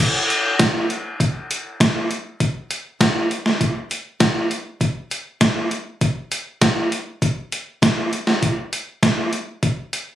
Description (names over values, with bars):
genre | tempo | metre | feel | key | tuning
rock | 100 BPM | 4/4 | straight | none | none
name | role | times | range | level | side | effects
gated 80s digital drum machine | drums | 0.3-10.1 s | hi-hat, kick drum, snare drum | -18 LUFS | equal | gated reverb, gated reverb snare, overdrive
room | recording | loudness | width
moderate studio reverb, RT60 0.6 s | recorded on a phone in the room, studio ambience, compression | -19 LUFS | side -12 dB against mid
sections
0.0-10.2 A section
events
none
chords
none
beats
0.60 1.20 1.80 | 2.41 3.01 3.61 4.21 | 4.81 5.42 6.02 6.62 | 7.22 7.82 8.42 9.02 | 9.62